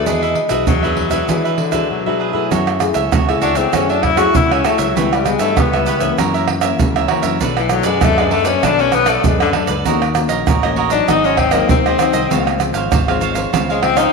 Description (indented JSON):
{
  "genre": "samba and choro",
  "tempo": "98 BPM",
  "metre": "4/4",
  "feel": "straight",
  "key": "unclear",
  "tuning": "A4 = 440 Hz",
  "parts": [
    { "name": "clear tenor saxophone", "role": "second line", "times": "0.0-14.1 s", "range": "D3 to F#4", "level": "-17 LUFS", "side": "left 6 dB", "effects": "none" },
    { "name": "cavaquinho", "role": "accompaniment", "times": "0.0-14.1 s", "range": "D4 to E#5", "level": "-20 LUFS", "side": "right 8 dB", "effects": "none" },
    { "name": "nylon-string guitar", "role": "accompaniment", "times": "0.0-14.1 s", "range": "F#2 to G#4", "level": "-22 LUFS", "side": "left 8 dB", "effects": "none" },
    { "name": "fingered electric bass", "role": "bass", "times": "0.0-14.1 s", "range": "G#1 to E3", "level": "-23 LUFS", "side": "equal", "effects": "none" },
    { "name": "egg shaker, surdo, pandeiro and tamborim", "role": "percussion", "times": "0.1-14.1 s", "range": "none", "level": "-18 LUFS", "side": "right 5 dB", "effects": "none" }
  ],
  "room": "wet echo chamber reverb, RT60 1.8 s, small room ambience",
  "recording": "1960s-style stereo with parts hard left and right",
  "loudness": "-13 LUFS",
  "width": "side -4 dB against mid",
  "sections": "0.0-2.5 A section; 2.5-14.1 B section",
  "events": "tenor saxophone solo 2.5-14.1",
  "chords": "0.1 E9; 2.5 F#m9; 5.0 C#m7b5; 6.2 F#7; 7.4 Bm7; 9.9 D#m7; 11.1 G#7; 12.3 C#maj7",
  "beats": "| 0.07 0.68 1.29 1.90 | 2.52 3.13 3.74 4.35 | 4.97 5.58 6.19 6.80 | 7.42 8.03 8.64 9.25 | 9.86 10.48 11.09 11.70 | 12.31 12.93 13.54"
}